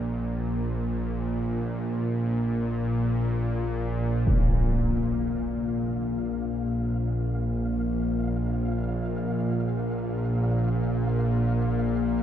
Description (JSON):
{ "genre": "dark ambient drone", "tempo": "free time", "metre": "none", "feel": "none", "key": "unclear", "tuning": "A4 = 440 Hz", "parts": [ { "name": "bowed-like drone", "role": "drone", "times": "0.0-12.2 s", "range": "Bb1 to Bb2", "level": "-25 LUFS", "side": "equal", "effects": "built-in reverb" }, { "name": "impact", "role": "percussion", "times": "4.3-4.5 s", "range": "none", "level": "-29 LUFS", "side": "equal", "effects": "low-pass filter on sfx" }, { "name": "flickering grainy texture", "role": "texture", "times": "4.7-12.2 s", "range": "F5", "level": "-43 LUFS", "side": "right 2 dB", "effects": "built-in reverb, shimmer reverb" } ], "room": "wet huge ambient reverb, RT60 8.0 s", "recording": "dark, warm production", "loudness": "-24 LUFS", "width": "side -10 dB against mid", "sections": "0.0-4.3 A section; 4.3-12.2 B section", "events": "none", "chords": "0.0 N.C.; 4.3 Bb5" }